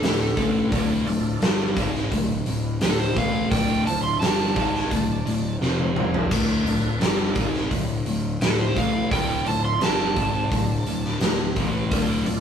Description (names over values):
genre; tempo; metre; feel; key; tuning
blues rock power trio and southern rock; 86 BPM; 4/4; straight; D minor; A4 = 440 Hz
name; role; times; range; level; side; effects
overdriven slide guitar; melody; 0.0-11.2 s; A4 to C6; -27 LUFS; right 4 dB; none
dark smooth lead guitar; second line; 0.0-11.2 s; D4 to E5; -36 LUFS; right 3 dB; overdrive
sludgy distorted guitar; riff; 0.0-12.4 s; D2 to A3; -25 LUFS; left 2 dB; overdrive
fuzz picked electric bass; bass; 0.0-12.4 s; D1 to A1; -29 LUFS; equal; overdrive
big rock drum kit; drums; 0.0-12.4 s; crash cymbal, hi-hat, kick drum, snare drum, toms; -24 LUFS; equal; none
overdriven tonewheel organ; sustained chords; 0.7-12.4 s; C4 to C5; -33 LUFS; right 4 dB; chorus vibrato, fast rotary speaker
room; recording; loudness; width
moderate studio reverb, RT60 0.5 s; rough rehearsal-room recording, tube saturation; -20 LUFS; side -8 dB against mid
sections
0.0-12.4 A section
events
drum fill 5.6-6.3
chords
0.0 Dm; 5.6 F5; 6.3 Dm